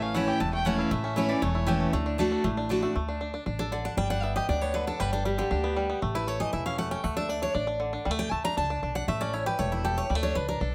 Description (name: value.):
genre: bluegrass.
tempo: 235 BPM.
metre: 4/4.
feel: straight.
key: D major.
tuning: A4 = 440 Hz.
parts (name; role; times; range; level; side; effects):
bluegrass banjo; melody; 0.0-10.7 s; D3 to G4; -34 LUFS; equal; plate reverb.
warm fiddle; melody; 0.0-1.9 s; C#5 to A5; -36 LUFS; equal; plate reverb.
picked steel-string acoustic guitar; accompaniment; 0.0-10.7 s; E2 to Bb5; -31 LUFS; equal; none.
upright bass; bass; 0.0-10.7 s; E1 to D2; -34 LUFS; equal; none.
room: moderate studio reverb, RT60 0.6 s.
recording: close, detailed microphones.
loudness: -28 LUFS.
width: mono.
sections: 0.0-3.0 A section; 3.0-10.7 B section.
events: steel-string acoustic guitar solo 3.0-10.7.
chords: 0.0 A; 1.9 D; 4.0 G; 6.0 A; 7.0 D5; 9.1 A; 10.1 D5.